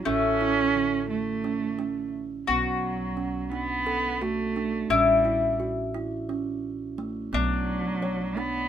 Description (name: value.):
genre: contemporary instrumental, chamber music in an uneven meter.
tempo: 173 BPM (eighths).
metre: 7/8.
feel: straight.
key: unclear.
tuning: A4 = 442 Hz.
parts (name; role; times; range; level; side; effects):
dark cello; melody; 0.0-8.7 s; F#3 to C#4; -28 LUFS; right 4 dB; none.
mandolin; second line; 0.0-8.7 s; A3 to F#4; -26 LUFS; left 4 dB; none.
kalimba; arpeggios; 0.1-8.6 s; D3 to C#5; -31 LUFS; right 5 dB; none.
upright bass; bass; 0.1-8.7 s; A1 to B1; -36 LUFS; left 1 dB; none.
room: little or no reverb.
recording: none.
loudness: -24 LUFS.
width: side -9 dB against mid.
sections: 0.0-2.5 A section; 2.5-8.7 B section.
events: none.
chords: 0.1 A; 2.5 Bm7; 4.9 A7; 7.3 Bm.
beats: | 0.06 0.41 0.75 1.10 1.44 1.79 2.13 | 2.48 2.83 3.17 3.52 3.86 4.21 4.56 | 4.90 5.25 5.60 5.94 6.29 6.63 6.98 | 7.33 7.67 8.02 8.37.